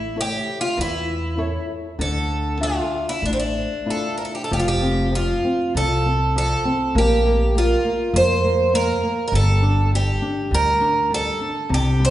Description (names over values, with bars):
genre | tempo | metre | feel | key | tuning
fado-style ballad | 100 BPM | 4/4 | rubato | D minor, F major from 4.5 s | A4 = 440 Hz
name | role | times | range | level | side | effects
picked twelve-string acoustic guitar | melody | 0.0-12.1 s | C4 to C5 | -22 LUFS | right 1 dB | none
flamenco guitar | accompaniment | 0.0-12.1 s | C3 to E5 | -24 LUFS | equal | none
upright bass | bass | 0.0-12.1 s | F1 to F2 | -22 LUFS | equal | none
room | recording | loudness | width
wet recital hall reverb, RT60 1.6 s | recorded in a church or concert hall, nothing above 10.9 kHz | -18 LUFS | side -13 dB against mid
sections
0.0-4.5 A section; 4.5-12.1 B section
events
none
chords
0.0 A; 2.0 Dmadd9; 4.5 F; 7.0 Bbsus2; 9.3 Gm